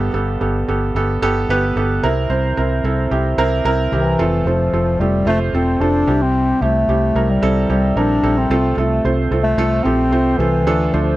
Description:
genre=piano-driven pop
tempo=111 BPM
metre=4/4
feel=straight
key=C major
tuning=A4 = 439 Hz
part: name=felt-muted upright piano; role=accompaniment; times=0.0-11.2 s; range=G2 to C5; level=-18 LUFS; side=right 3 dB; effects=none
part: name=vintage muted fingered electric bass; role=bass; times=0.0-11.2 s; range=E1 to D2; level=-20 LUFS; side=left 1 dB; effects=none
part: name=mellow bass clarinet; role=melody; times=3.9-11.2 s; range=E3 to D4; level=-18 LUFS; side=left 1 dB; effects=none
room=light reverb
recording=dry, close 1970s-style studio recording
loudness=-14 LUFS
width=side -16 dB against mid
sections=0.0-4.2 A section; 4.2-11.2 B section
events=none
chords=0.0 Gadd9; 2.0 C7; 4.2 F; 6.1 C; 8.5 F/C; 10.7 Dm

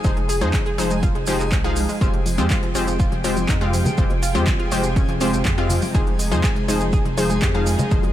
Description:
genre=progressive house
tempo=122 BPM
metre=4/4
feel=straight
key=F minor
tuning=A4 = 438 Hz
part: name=analog pluck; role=arpeggios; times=0.0-8.1 s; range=F3 to Ab4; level=-27 LUFS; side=right 1 dB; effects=chorus, sidechain pumping, tape echo
part: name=wide unison pluck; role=stabs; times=0.0-8.1 s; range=F3 to F5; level=-24 LUFS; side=left 2 dB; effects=sidechain pumping, tape echo
part: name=saturated sub bass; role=bass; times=0.0-8.1 s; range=F1 to F2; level=-25 LUFS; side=equal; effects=sidechain pumping
part: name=deep house drum kit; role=drums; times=0.0-8.1 s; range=handclaps, hi-hat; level=-30 LUFS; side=equal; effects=sidechain pumping on hats, studio reverb
part: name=electronic kick drum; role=drums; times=0.0-8.0 s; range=none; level=-21 LUFS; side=equal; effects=overdrive, studio reverb
part: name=maracas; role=percussion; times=0.0-8.0 s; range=none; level=-32 LUFS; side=right 4 dB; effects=none
part: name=backwards swelling texture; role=texture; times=0.0-8.1 s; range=Ab4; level=-35 LUFS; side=equal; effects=built-in reverb, sidechain pumping
part: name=dark studio string section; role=sustained chords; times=2.0-8.1 s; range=C3 to G5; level=-30 LUFS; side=equal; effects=sidechain pumping
part: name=congas and bongos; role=percussion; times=2.5-8.1 s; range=none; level=-27 LUFS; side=left 1 dB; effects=none
room=digital ambience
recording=none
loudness=-17 LUFS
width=side -12 dB against mid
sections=0.0-8.1 A section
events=none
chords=0.0 Ab/F; 2.0 Fmadd9; 5.9 Ab/F

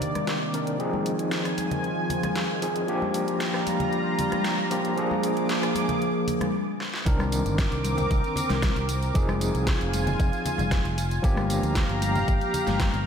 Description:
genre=nu-disco, nu disco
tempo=115 BPM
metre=4/4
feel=straight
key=C minor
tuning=A4 = 440 Hz
part: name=overdriven tine electric piano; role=accompaniment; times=0.0-13.0 s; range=Eb3 to Bb4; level=-28 LUFS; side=equal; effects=fast tremolo, sidechain pumping, low-pass filter, diffuse ambient delay
part: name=lush unison pad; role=sustained chords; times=0.0-13.1 s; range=C3 to D6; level=-29 LUFS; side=equal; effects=chorus, sidechain pumping
part: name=pop drum kit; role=drums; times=0.0-13.0 s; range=hi-hat, rim click, snare drum, tambourine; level=-33 LUFS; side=equal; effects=overdrive, high-pass filter on perc, high-pass filter on hats, high-pass filter on snare, high-pass filter on room
part: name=congas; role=percussion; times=0.0-12.8 s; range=none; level=-33 LUFS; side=left 3 dB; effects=none
part: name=fingered electric bass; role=bass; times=7.1-13.1 s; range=F1 to D2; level=-28 LUFS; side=equal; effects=none
part: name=electronic kick drum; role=drums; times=7.1-12.9 s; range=none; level=-25 LUFS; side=equal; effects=overdrive
room=wet lush hall reverb, RT60 1.7 s, digital ambience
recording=dreamy mix soaked in reverb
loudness=-23 LUFS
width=side -7 dB against mid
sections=0.0-7.1 A section; 7.1-13.1 B section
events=build-up 0.0-7.1; stop 6.5-7.1; drum fill 6.8; drop 7.1-13.1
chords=0.0 Cm9; 0.8 Fm7; 2.9 Gm7; 5.0 Bb7; 7.1 Cm9; 9.2 Fm7; 11.2 Gm7

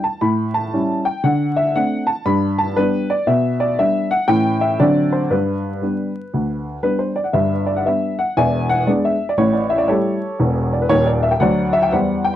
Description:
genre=jazz, stride piano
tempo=118 BPM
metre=4/4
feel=swing 65% on 8ths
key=G major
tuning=A4 = 441 Hz
part: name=warm upright piano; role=solo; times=0.0-12.3 s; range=Eb1 to B5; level=-16 LUFS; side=equal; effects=none
room=light reverb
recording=dry, close 1970s-style studio recording, vinyl crackle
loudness=-16 LUFS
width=side -12 dB against mid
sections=0.0-7.3 A section; 7.3-12.4 A section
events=none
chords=0.2 A7; 1.2 D5; 2.3 G; 3.3 G/B; 4.3 A7; 4.8 D7; 5.3 G; 8.4 E7; 9.4 A7; 11.4 D7

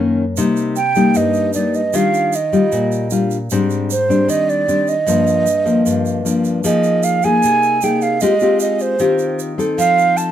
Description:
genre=bossa nova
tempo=153 BPM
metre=4/4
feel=straight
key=Eb major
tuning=A4 = 440 Hz
part: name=nylon-string guitar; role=accompaniment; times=0.0-10.3 s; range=F#2 to A4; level=-16 LUFS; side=left 3 dB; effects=none
part: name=tube shaker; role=percussion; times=0.4-10.3 s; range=none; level=-29 LUFS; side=right 9 dB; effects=none
part: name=mellow hollow jazz flute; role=melody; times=0.8-10.3 s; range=C5 to A5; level=-16 LUFS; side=right 4 dB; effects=none
room=light reverb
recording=dark, warm production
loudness=-14 LUFS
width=side -10 dB against mid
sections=0.0-6.6 A section; 6.6-10.3 B section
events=none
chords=0.4 Cm7; 1.9 Ebmaj9; 3.5 Abmaj7#11; 5.1 Ebmaj9/G; 6.6 Fm7; 8.2 Ab6; 9.8 F7

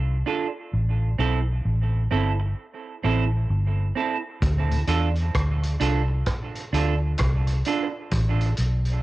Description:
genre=dub reggae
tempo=65 BPM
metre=4/4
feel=swing 61% on 16ths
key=unclear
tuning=A4 = 439 Hz
part: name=vintage muted fingered electric bass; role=bass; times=0.0-9.0 s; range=G1 to E2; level=-22 LUFS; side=equal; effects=tube saturation
part: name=semi-hollow electric guitar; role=accompaniment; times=0.3-7.9 s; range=C4 to A4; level=-28 LUFS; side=right 6 dB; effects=lush chorus, cassette tape, dub echo
part: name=vintage drum kit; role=drums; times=4.4-9.0 s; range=hi-hat, kick drum, rim click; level=-29 LUFS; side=equal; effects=cassette tape
part: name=mellow tonewheel organ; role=accompaniment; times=4.7-4.8 s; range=D2 to A2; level=-29 LUFS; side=left 3 dB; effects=chorus vibrato, slow rotary speaker, cassette tape
part: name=cowbell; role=percussion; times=5.3-7.5 s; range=none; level=-38 LUFS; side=right 6 dB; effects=dub echo
room=small room ambience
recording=home recording on cassette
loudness=-22 LUFS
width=side -17 dB against mid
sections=0.0-9.0 A section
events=break 0.0-4.4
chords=0.0 Dm; 0.7 Am; 4.4 Dm; 8.1 Gadd9 (rootless)

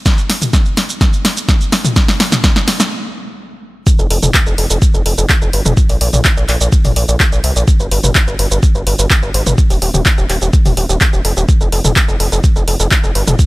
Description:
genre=melodic techno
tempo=126 BPM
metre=4/4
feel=straight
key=unclear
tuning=A4 = 440 Hz
part: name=deep house drum kit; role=drums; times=0.1-13.5 s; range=handclaps, hi-hat, shaker, snare drum, toms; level=-15 LUFS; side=equal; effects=sidechain pumping on perc, sidechain pumping on hats, sidechain pumping on toms
part: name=electronic kick drum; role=drums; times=0.1-13.5 s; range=none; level=-12 LUFS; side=equal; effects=none
part: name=gritty driven synth bass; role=bass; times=4.0-13.3 s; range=Eb1 to C2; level=-14 LUFS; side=equal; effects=sidechain pumping
room=little or no reverb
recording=none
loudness=-10 LUFS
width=side -20 dB against mid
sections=0.0-3.9 A section; 3.9-13.5 B section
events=build-up 0.0-3.9; drum fill 0.0-2.9; stop 2.9-3.9; drop 3.9-13.5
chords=none

